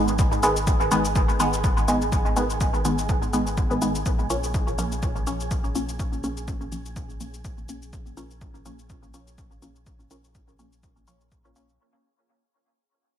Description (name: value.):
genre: dub techno.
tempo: 124 BPM.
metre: 4/4.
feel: swing 56% on 16ths.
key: unclear.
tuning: A4 = 441 Hz.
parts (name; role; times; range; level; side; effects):
filtered dub chord stab; stabs; 0.0-11.7 s; D#3 to C#4; -25 LUFS; equal; chorus, phaser, sidechain pumping, dub echo.
warm sub bass; bass; 0.0-11.8 s; G#1 to A#1; -32 LUFS; equal; sidechain pumping.
wind-like tuned noise texture; texture; 0.0-11.8 s; G#4; -34 LUFS; right 3 dB; built-in reverb, analog chorus, sidechain pumping.
cabasa; drums; 0.1-11.8 s; none; -35 LUFS; left 5 dB; none.
electronic kick drum; drums; 0.2-11.4 s; none; -25 LUFS; equal; none.
room: light reverb.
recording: bright 1980s-style digital production.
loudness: -21 LUFS.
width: side -10 dB against mid.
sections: 0.0-11.8 A section.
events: fade-out 0.0-11.8; filter sweep on synth stab 0.0-11.8.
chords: 0.0 G#m; 4.1 A#m.